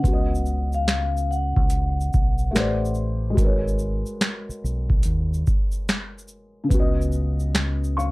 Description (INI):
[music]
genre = lo-fi hip hop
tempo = 72 BPM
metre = 4/4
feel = swing 65% on 16ths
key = G# dorian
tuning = A4 = 439 Hz
[part]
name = vibraphone with soft mallets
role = melody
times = 0.0-2.9 s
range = E#5 to F#5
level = -29 LUFS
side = left 1 dB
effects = low-pass filter, analog delay
[part]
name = felt-muted upright piano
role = accompaniment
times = 0.0-8.1 s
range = C#3 to C#6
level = -28 LUFS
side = left 2 dB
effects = low-pass filter
[part]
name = deep dub fingered electric bass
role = bass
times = 0.0-8.1 s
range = G#1 to D#2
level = -24 LUFS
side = equal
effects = none
[part]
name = booming analog drum machine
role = drums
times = 0.0-8.1 s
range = finger snaps, hi-hat, kick drum, shaker, snare drum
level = -22 LUFS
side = equal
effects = overdrive
[sound]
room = little or no reverb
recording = none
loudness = -20 LUFS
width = side -21 dB against mid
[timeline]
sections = 0.0-8.1 A section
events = none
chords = 0.0 C#9sus4; 2.5 Am11; 3.4 G#m11; 6.7 C#9sus4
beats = | 0.04 0.88 1.71 2.54 | 3.38 4.21 5.04 5.88 | 6.71 7.54